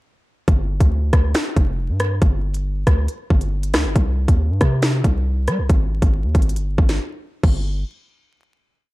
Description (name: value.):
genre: hip hop, drill.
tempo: 138 BPM.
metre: 4/4.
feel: half-time.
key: unclear.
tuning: A4 = 441 Hz.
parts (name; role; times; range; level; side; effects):
hard-hitting 808-style bass; bass; 0.5-7.8 s; F1 to G3; -20 LUFS; equal; none.
drill drum kit; drums; 0.5-7.5 s; crash cymbal, finger snaps, hi-hat, kick drum, rim click, snare drum; -18 LUFS; equal; none.
room: little or no reverb.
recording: dark, warm production, vinyl crackle.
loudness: -16 LUFS.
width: side -19 dB against mid.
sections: 0.5-7.4 hook; 7.4-8.9 final note.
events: break 7.0-7.4.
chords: none.